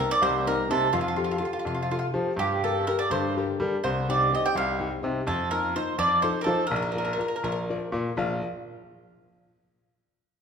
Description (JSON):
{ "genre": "italian folk, Italian serenade", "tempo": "83 BPM (dotted quarters)", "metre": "6/8", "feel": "rubato", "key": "Bb major", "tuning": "A4 = 440 Hz", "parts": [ { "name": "bowl-back mandolin", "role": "melody", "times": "0.0-7.6 s", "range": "F4 to G5", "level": "-26 LUFS", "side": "right 2 dB", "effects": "none" }, { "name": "nylon-string guitar", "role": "accompaniment", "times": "0.0-8.4 s", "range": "Bb2 to F5", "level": "-30 LUFS", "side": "left 4 dB", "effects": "none" }, { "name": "bright grand piano", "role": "bass", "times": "0.2-8.4 s", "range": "Bb1 to G3", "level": "-30 LUFS", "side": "equal", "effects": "none" } ], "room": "wet recital hall reverb, RT60 1.8 s", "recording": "minimal, uncompressed stereo recording", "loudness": "-24 LUFS", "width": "side -6 dB against mid", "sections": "0.0-8.2 A section; 8.2-9.6 B section", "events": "none", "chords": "0.0 Cm7; 0.9 Fadd9; 2.4 Gmadd9; 3.8 Cm; 5.3 F7sus4; 6.0 F7; 6.7 Bb" }